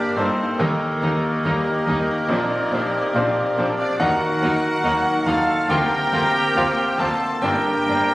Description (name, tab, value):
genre	cinematic, emotional film score for orchestra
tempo	70 BPM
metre	4/4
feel	rubato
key	Bb major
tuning	A4 = 443 Hz
part	clear clarinet	second line	0.0-8.1 s	F4 to C5	-30 LUFS	equal	none
part	mellow cor anglais	second line	0.0-8.1 s	Bb3 to A4	-26 LUFS	equal	none
part	silver concert flute	second line	0.0-8.1 s	Eb4 to C5	-25 LUFS	equal	none
part	warm studio violin section	second line	0.0-8.1 s	Bb4 to A5	-29 LUFS	left 1 dB	none
part	clear baby grand piano	accompaniment	0.0-8.1 s	G1 to A5	-25 LUFS	equal	none
part	dark French horn section	sustained chords	0.0-8.1 s	Bb3 to D5	-26 LUFS	left 1 dB	none
part	warm studio violin section	melody	0.2-8.0 s	D4 to F4	-29 LUFS	left 1 dB	none
part	rich studio viola section	accompaniment	0.2-8.0 s	F3 to C4	-30 LUFS	right 1 dB	none
part	rich studio double bass section	bass	0.2-8.0 s	G1 to Eb2	-31 LUFS	right 1 dB	none
part	warm studio cello section	bass	0.2-8.0 s	D2 to Bb2	-30 LUFS	right 1 dB	none
room	wet recital hall reverb, RT60 1.6 s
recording	recorded on a phone in the room, studio reverb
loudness	-18 LUFS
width	side -18 dB against mid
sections	0.0-8.1 A section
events	none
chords	0.0 Gm; 0.6 Eb; 2.3 Bbadd9; 4.0 Ebm; 5.7 Bbadd9/D; 7.4 Gm